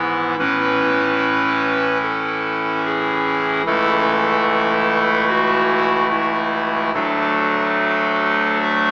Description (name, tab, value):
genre	classical, chorale-style piece for pipe organ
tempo	73 BPM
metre	4/4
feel	rubato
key	A major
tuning	A4 = 440 Hz
part	chamber organ, clarinet reed	solo	0.0-8.9 s	C#1 to E5	-15 LUFS	equal	none
room	wet church reverb, RT60 3.8 s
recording	small speaker sound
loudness	-15 LUFS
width	side -26 dB against mid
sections	0.0-8.9 A section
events	none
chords	0.4 A; 3.7 A/C#; 6.9 D